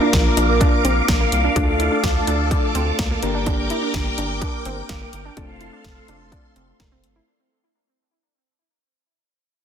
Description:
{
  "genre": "synth-pop",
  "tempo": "126 BPM",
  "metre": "4/4",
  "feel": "straight",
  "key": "unclear",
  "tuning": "A4 = 440 Hz",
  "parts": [
    { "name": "soft electric-piano-like synth keys", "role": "accompaniment", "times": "0.0-7.2 s", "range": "A3 to Bb4", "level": "-25 LUFS", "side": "left 2 dB", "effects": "chorus" },
    { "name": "phased string machine", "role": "sustained chords", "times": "0.0-7.3 s", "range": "A4 to D6", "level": "-24 LUFS", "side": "right 1 dB", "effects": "ensemble chorus, phaser" },
    { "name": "warbly dusty pluck", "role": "arpeggios", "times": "0.0-7.2 s", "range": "Bb3 to E4", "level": "-26 LUFS", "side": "right 2 dB", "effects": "chorus, tape echo" },
    { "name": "rubbery square bass", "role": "bass", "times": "0.1-7.2 s", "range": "F1 to D2", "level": "-24 LUFS", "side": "equal", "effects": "none" },
    { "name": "house drum kit", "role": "drums", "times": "0.1-7.1 s", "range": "hi-hat, kick drum, snare drum", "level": "-21 LUFS", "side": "equal", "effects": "none" }
  ],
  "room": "light reverb",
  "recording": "dense, heavily limited modern master",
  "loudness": "-17 LUFS",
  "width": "side -8 dB against mid",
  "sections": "0.0-7.3 A section",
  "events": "fade-out 0.0-7.3",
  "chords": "0.0 Bb; 1.6 Dm; 3.2 Gm; 5.4 F"
}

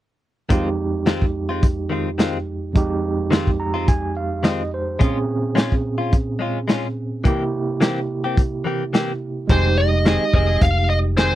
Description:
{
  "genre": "straight-eighth soul blues",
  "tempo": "107 BPM",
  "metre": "4/4",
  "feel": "swing 54% on 16ths",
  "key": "F minor",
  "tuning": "A4 = 436 Hz",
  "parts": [
    { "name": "overdriven tine electric piano", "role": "accompaniment", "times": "0.5-11.3 s", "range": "F2 to Bb5", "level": "-23 LUFS", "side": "right 3 dB", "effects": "fast tremolo" },
    { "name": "direct-recorded clean electric guitar", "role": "stabs", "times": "0.5-11.3 s", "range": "Eb3 to Ab4", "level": "-23 LUFS", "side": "left 4 dB", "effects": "wide subtle chorus" },
    { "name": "crunchy breakbeat drum kit", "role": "drums", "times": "0.5-11.3 s", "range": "hi-hat, kick drum, snare drum", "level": "-18 LUFS", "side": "equal", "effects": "none" },
    { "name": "dark smooth lead guitar", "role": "melody", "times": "9.5-11.3 s", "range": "C5 to F5", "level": "-20 LUFS", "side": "equal", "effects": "overdrive" },
    { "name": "vintage muted fingered electric bass", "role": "bass", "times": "9.5-11.3 s", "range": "F1", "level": "-19 LUFS", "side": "equal", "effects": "none" }
  ],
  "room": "little or no reverb",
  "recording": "dry, close 1970s-style studio recording",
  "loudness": "-18 LUFS",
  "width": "side -14 dB against mid",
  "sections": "0.5-9.5 A section; 9.5-11.3 B section",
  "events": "tine electric piano fill 3.3-5.0",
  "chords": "0.5 Fm7; 5.0 Bbm7; 7.2 C7; 9.5 Fm7"
}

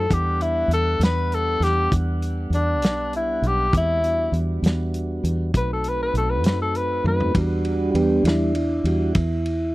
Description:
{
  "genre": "slow blues",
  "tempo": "66 BPM (dotted quarters)",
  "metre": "12/8",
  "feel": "straight",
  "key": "E minor",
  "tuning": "A4 = 439 Hz",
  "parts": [
    { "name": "clear tenor saxophone", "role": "melody", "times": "0.0-7.4 s", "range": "D4 to B4", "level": "-24 LUFS", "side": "left 2 dB", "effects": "none" },
    { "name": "mellow tonewheel organ", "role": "sustained chords", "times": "0.0-9.7 s", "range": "G3 to F#5", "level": "-26 LUFS", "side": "right 1 dB", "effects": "slow rotary speaker" },
    { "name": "fingered electric bass", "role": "bass", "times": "0.0-9.7 s", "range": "B1 to F#2", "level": "-23 LUFS", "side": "equal", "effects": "none" },
    { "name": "warm soul drum kit", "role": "drums", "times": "0.1-9.6 s", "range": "hi-hat, kick drum, ride cymbal, snare drum, toms", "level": "-22 LUFS", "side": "equal", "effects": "none" }
  ],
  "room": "little or no reverb",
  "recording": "dry, close 1970s-style studio recording",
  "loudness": "-19 LUFS",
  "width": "side -19 dB against mid",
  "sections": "0.0-7.3 A section; 7.3-9.7 B section",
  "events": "drum fill 7.0-7.3; tonewheel organ solo 7.3-9.7",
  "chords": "0.1 Em7; 5.5 B7b9; 7.3 Em7"
}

